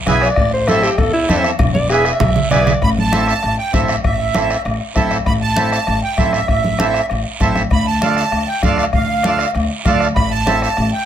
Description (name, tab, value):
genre	latin, cumbia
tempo	196 BPM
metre	4/4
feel	straight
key	A minor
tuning	A4 = 440 Hz
part	accordion	accompaniment	0.1-10.7 s	B3 to A4	-19 LUFS	right 4 dB	none
part	upright bass	bass	0.1-10.9 s	E1 to E2	-20 LUFS	equal	none
part	bombo	percussion	0.1-10.9 s	none	-20 LUFS	left 2 dB	none
part	congas	percussion	0.1-10.9 s	none	-22 LUFS	right 2 dB	none
part	guiro	percussion	0.1-11.1 s	none	-29 LUFS	right 6 dB	none
part	breathy alto saxophone	melody	0.2-2.8 s	E4 to E5	-17 LUFS	equal	none
part	accordion	second line	2.8-11.1 s	E5 to B5	-20 LUFS	right 4 dB	light tremolo tuning
room	light reverb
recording	close, detailed microphones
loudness	-13 LUFS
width	side -10 dB against mid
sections	0.0-2.8 A section; 2.8-11.1 B section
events	alto saxophone solo 0.0-2.8; drum fill 1.6-2.8; accordion solo 2.8-11.1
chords	0.4 Am; 1.6 E7; 2.8 Am; 7.7 Dm; 10.2 Am